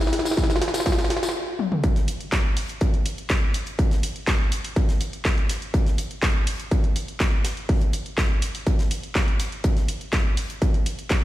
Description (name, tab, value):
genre	techno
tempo	123 BPM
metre	4/4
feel	straight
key	none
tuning	none
part	techno drum kit	drums	0.0-11.2 s	handclaps, hi-hat, snare drum, toms	-27 LUFS	equal	none
part	tambourine	percussion	0.0-1.3 s	none	-35 LUFS	left 3 dB	none
part	electronic kick drum	drums	0.4-11.2 s	none	-22 LUFS	equal	distortion
part	tight funk drum kit	drums	1.8-11.2 s	hi-hat, snare drum	-39 LUFS	left 2 dB	sidechain pumping on hats, high-pass filter on hats, high-pass filter on snare, high-pass filter on room
room	light reverb, studio reverb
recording	played on a big sound system in a bare room, stone room reverb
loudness	-21 LUFS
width	side -15 dB against mid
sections	0.0-1.8 A section; 1.8-11.2 B section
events	build-up 0.0-1.8; drum fill 0.0-1.3, 1.6; stop 1.3-1.8; drop 1.8-11.2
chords	none